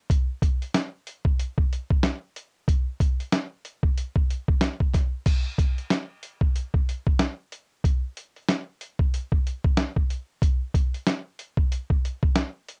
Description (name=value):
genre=hip hop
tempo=93 BPM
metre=4/4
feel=swing 58% on 16ths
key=none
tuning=none
part: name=dusty soul sampler-style drum kit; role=drums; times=0.1-12.8 s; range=crash cymbal, hi-hat, kick drum, snare drum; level=-24 LUFS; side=equal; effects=vintage 12-bit sampler grit
room=little or no reverb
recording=cassette tape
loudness=-26 LUFS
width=mono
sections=0.0-5.3 A section; 5.3-12.8 B section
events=none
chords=none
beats=| 0.10 0.74 1.39 2.03 | 2.68 3.33 3.97 4.62 | 5.26 5.91 6.55 7.20 | 7.84 8.49 9.13 9.78 | 10.42 11.07 11.71 12.36